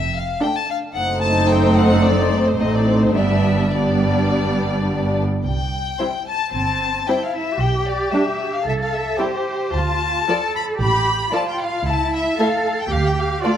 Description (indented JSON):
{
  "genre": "quick classical-period movement for string orchestra",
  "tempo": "113 BPM",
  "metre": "4/4",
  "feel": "rubato",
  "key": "C major",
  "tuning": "A4 = 439 Hz",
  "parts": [
    { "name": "rich chamber violin section", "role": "melody", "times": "0.0-13.6 s", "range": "C5 to B5", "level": "-23 LUFS", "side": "left 4 dB", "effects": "none" },
    { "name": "warm chamber cello section", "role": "bass", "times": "0.0-13.6 s", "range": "F2 to A4", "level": "-24 LUFS", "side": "right 2 dB", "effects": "none" },
    { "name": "warm chamber double bass section", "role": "bass", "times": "0.0-13.3 s", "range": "F1 to D2", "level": "-23 LUFS", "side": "right 2 dB", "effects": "none" },
    { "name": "dark chamber violin section", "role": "second line", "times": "0.4-13.5 s", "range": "D4 to E5", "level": "-23 LUFS", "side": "left 3 dB", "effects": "none" },
    { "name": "warm chamber viola section", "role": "accompaniment", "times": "0.4-13.5 s", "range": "F3 to F4", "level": "-21 LUFS", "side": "right 1 dB", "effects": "none" }
  ],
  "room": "moderate concert hall reverb, RT60 2.4 s",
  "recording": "close, detailed microphones",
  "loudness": "-17 LUFS",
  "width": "side -10 dB against mid",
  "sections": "0.0-5.5 A section; 5.5-13.6 B section",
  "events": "none",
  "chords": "0.0 Dm/F; 1.0 F#dim7; 3.2 G; 5.5 C; 7.6 G/B; 8.7 C; 9.7 Dm; 11.9 A/C#; 12.9 Dm"
}